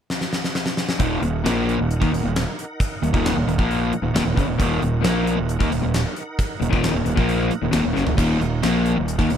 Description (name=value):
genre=classic rock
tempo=134 BPM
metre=4/4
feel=straight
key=Eb minor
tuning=A4 = 442 Hz
part: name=gated 80s drum kit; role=drums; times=0.1-9.4 s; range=crash cymbal, hi-hat, kick drum, snare drum, toms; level=-24 LUFS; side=equal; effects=none
part: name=tonewheel organ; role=sustained chords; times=1.0-9.4 s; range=Eb4 to Gb5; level=-34 LUFS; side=right 1 dB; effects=slow rotary speaker, overdrive, chorus vibrato
part: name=crunchy overdriven guitar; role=riff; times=1.0-9.4 s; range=Eb2 to Bb3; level=-23 LUFS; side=left 11 dB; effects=phaser
part: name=sludgy distorted guitar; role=riff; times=1.0-9.4 s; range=Eb2 to Bb3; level=-23 LUFS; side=right 8 dB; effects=overdrive
part: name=fuzz fingered electric bass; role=bass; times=1.0-9.4 s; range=Eb1 to Eb2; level=-25 LUFS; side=equal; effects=overdrive
room=little or no reverb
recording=none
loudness=-19 LUFS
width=side -9 dB against mid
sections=0.0-1.0 A section; 1.0-9.4 B section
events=drum fill 0.1-1.0, 8.0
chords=0.0 N.C.; 1.0 Ebm